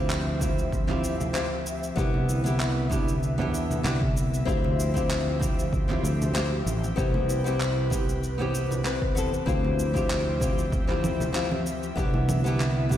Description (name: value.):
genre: sunset chillout.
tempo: 96 BPM.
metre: 4/4.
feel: swing 54% on 16ths.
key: D dorian.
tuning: A4 = 437 Hz.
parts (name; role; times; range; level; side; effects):
flamenco guitar; accompaniment; 0.0-13.0 s; B3 to B4; -30 LUFS; moving between left 5 dB and right 2 dB; auto-pan, digital delay.
airy breathy pad; sustained chords; 0.0-13.0 s; C3 to E5; -32 LUFS; equal; chorus.
sustaining fretless electric bass; bass; 0.0-13.0 s; A1 to E2; -28 LUFS; right 1 dB; tube saturation.
electronic handclaps, cabasa and congas; drums; 0.1-13.0 s; none; -34 LUFS; right 1 dB; none.
electronic kick drum; drums; 0.4-13.0 s; none; -29 LUFS; equal; none.
congas; percussion; 0.4-13.0 s; none; -34 LUFS; right 2 dB; none.
room: moderate lush hall reverb, RT60 2.2 s.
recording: played on a big sound system in a bare room, large studio reverb.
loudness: -23 LUFS.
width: side -11 dB against mid.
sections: 0.0-13.0 A section.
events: none.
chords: 0.0 Dm11; 2.0 Cmaj9; 4.5 Dm11; 7.0 Am9/C (rootless); 9.5 Dm11; 12.0 Cmaj9.